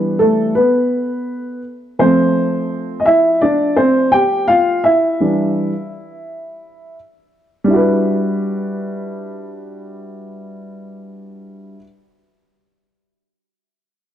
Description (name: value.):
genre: hip hop.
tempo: 84 BPM.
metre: 4/4.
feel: swing 62% on 16ths.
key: unclear.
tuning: A4 = 440 Hz.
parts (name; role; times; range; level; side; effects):
dark upright piano; accompaniment; 0.0-11.9 s; E3 to G5; -15 LUFS; equal; none.
room: moderate plate reverb, RT60 2.6 s.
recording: dark, warm production.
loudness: -13 LUFS.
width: side -10 dB against mid.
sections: 0.0-7.7 A section; 7.7-10.6 B section.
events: upright piano solo 0.0-7.7.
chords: 0.0 Em7; 2.0 Fmaj9; 4.8 Em7; 7.7 Em9.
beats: 0.56 1.28 | 1.99 2.71 3.42 4.14 | 4.85 5.57 6.28 6.99 | 7.71 8.42 9.14 9.85.